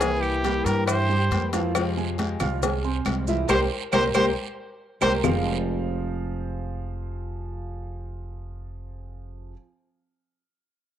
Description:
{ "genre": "latin, Cuban son and guajira", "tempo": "137 BPM", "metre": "4/4", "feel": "straight", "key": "F harmonic minor", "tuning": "A4 = 441 Hz", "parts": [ { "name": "bright trumpet", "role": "melody", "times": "0.0-5.1 s", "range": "G4 to C5", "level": "-27 LUFS", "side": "equal", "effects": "cassette tape" }, { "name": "warm studio violin section", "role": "second line", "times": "0.0-5.2 s", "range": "E4 to C5", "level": "-29 LUFS", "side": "equal", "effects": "cassette tape" }, { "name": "flamenco guitar", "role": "accompaniment", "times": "0.0-9.6 s", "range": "F2 to F4", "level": "-32 LUFS", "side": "left 7 dB", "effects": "cassette tape" }, { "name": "dark concert grand piano", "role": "arpeggios", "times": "0.0-9.5 s", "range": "E3 to F6", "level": "-30 LUFS", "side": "right 8 dB", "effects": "cassette tape" }, { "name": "upright bass", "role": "bass", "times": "0.0-9.5 s", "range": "F1 to G2", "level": "-29 LUFS", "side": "equal", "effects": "none" }, { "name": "congas", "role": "percussion", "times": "0.0-5.3 s", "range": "none", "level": "-32 LUFS", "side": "left 1 dB", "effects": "none" }, { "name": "cowbell and bongos", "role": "percussion", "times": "0.0-5.3 s", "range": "none", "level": "-30 LUFS", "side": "left 8 dB", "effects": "none" }, { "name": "guiro", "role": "percussion", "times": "0.0-5.3 s", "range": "none", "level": "-40 LUFS", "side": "right 10 dB", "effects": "none" }, { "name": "maracas", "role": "percussion", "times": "0.0-5.3 s", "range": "none", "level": "-39 LUFS", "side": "right 13 dB", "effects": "none" }, { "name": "claves", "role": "percussion", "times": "0.2-5.3 s", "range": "none", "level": "-34 LUFS", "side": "right 10 dB", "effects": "none" } ], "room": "moderate spring reverb, RT60 1.6 s, small room ambience", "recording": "home recording on cassette", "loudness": "-22 LUFS", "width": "side -10 dB against mid", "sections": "0.0-5.2 A section; 5.2-8.7 B section", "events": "band accent 3.5-5.2; drum fill 4.6-5.2", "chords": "0.0 C7; 1.7 Fm; 3.5 C5; 5.2 Fm" }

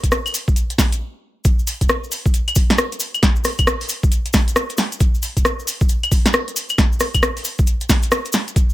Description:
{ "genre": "UK garage", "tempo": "135 BPM", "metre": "4/4", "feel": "swing 63% on 16ths", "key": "none", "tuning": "none", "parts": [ { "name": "electronic kick drum", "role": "drums", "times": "0.0-8.7 s", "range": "none", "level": "-17 LUFS", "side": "equal", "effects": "none" }, { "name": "garage drum kit", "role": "drums", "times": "0.0-8.7 s", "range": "claves, hi-hat, rim click, snare drum", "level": "-19 LUFS", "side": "equal", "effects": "none" }, { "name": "cabasa", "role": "percussion", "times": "0.0-8.7 s", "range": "none", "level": "-27 LUFS", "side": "left 2 dB", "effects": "none" } ], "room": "little or no reverb", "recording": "none", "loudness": "-16 LUFS", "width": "side -16 dB against mid", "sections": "0.0-1.4 A section; 1.4-8.7 A section", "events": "stop 1.0-1.4", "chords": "none" }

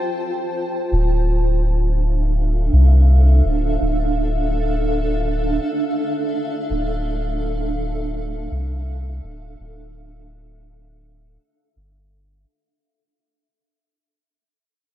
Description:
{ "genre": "ambient dub", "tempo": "83 BPM", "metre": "4/4", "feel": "straight", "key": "D minor", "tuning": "A4 = 440 Hz", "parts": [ { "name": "granular cloud pad", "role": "sustained chords", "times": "0.0-12.5 s", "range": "D4 to A5", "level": "-24 LUFS", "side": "right 1 dB", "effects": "built-in reverb" }, { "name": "soft dub sub bass", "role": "bass", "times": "0.9-12.5 s", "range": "D1 to C2", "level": "-17 LUFS", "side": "equal", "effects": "none" } ], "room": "light reverb", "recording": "none", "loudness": "-17 LUFS", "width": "side -13 dB against mid", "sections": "0.9-12.5 A section", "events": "break 0.0-0.9; fade-out 0.9-12.5", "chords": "0.0 Dm7 (rootless); 0.9 Dm7" }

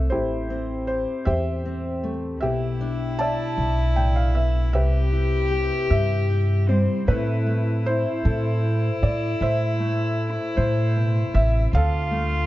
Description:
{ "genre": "acoustic folk-pop ballad", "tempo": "52 BPM (dotted quarters)", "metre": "6/8", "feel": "straight", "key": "A minor", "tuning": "A4 = 440 Hz", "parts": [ { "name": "felt-muted upright piano", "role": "melody", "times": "0.0-12.5 s", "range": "E4 to A5", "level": "-27 LUFS", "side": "equal", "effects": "none" }, { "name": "fingerpicked steel-string acoustic guitar", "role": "accompaniment", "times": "0.0-12.5 s", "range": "A2 to C5", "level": "-29 LUFS", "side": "left 2 dB", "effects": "none" }, { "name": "upright bass", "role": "bass", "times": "0.0-12.5 s", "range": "A1 to A2", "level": "-22 LUFS", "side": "equal", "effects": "none" }, { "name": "warm cello", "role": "second line", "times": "2.4-12.5 s", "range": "C4 to G4", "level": "-28 LUFS", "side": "left 2 dB", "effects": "none" } ], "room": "light reverb", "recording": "dark, warm production, nothing above 7.5 kHz", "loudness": "-20 LUFS", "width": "side -16 dB against mid", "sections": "0.0-7.1 A section; 7.1-12.5 B section", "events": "none", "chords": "0.1 Am7; 2.4 Em7/B; 4.7 Cmaj7; 7.1 Am; 11.7 Dm" }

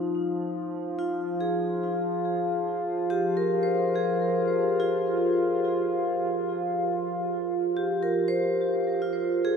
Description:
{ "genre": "ambient", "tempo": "71 BPM", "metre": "3/4", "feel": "straight", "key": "F minor", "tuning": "A4 = 441 Hz", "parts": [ { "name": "vibraphone with medium hard mallets", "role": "arpeggios", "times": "0.0-9.6 s", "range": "Eb4 to C5", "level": "-26 LUFS", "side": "equal", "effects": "tape echo" }, { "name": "analog drone", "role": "drone", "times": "0.0-9.6 s", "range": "F3 to F4", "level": "-29 LUFS", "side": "left 1 dB", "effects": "chorus" } ], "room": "wet huge ambient reverb, RT60 8.3 s", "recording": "none", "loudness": "-24 LUFS", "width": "side -6 dB against mid", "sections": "0.0-9.6 A section", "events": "fade-in on vibraphone 0.0-9.6; fade-in on synth drone 0.0-9.6", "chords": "0.0 Ebsus2/F; 1.4 Fm" }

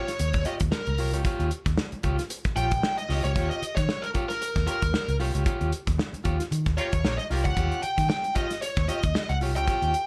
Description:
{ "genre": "funk", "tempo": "114 BPM", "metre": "4/4", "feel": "swing 56% on 16ths", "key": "Eb mixolydian", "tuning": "A4 = 438 Hz", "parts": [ { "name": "bluesy overdriven lead guitar", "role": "melody", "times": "0.0-10.1 s", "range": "Bb4 to G5", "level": "-31 LUFS", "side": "equal", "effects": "distortion" }, { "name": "electric guitar at the edge of break-up", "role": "accompaniment", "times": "0.0-9.9 s", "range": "F4 to Db5", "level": "-36 LUFS", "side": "equal", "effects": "tremolo" }, { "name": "warm soul drum kit", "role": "drums", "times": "0.1-10.1 s", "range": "hi-hat, kick drum, snare drum", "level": "-31 LUFS", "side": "equal", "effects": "none" }, { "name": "vintage muted fingered electric bass", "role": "bass", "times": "0.2-9.9 s", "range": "Bb1 to Eb3", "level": "-30 LUFS", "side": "equal", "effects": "none" }, { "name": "clear horn section", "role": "second line", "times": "6.8-7.5 s", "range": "F4 to Bb4", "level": "-38 LUFS", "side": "equal", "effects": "none" } ], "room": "light reverb", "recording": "lossy compression artefacts", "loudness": "-27 LUFS", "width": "mono", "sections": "0.0-10.1 A section", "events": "band accent 5.5-7.6", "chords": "0.0 Eb9" }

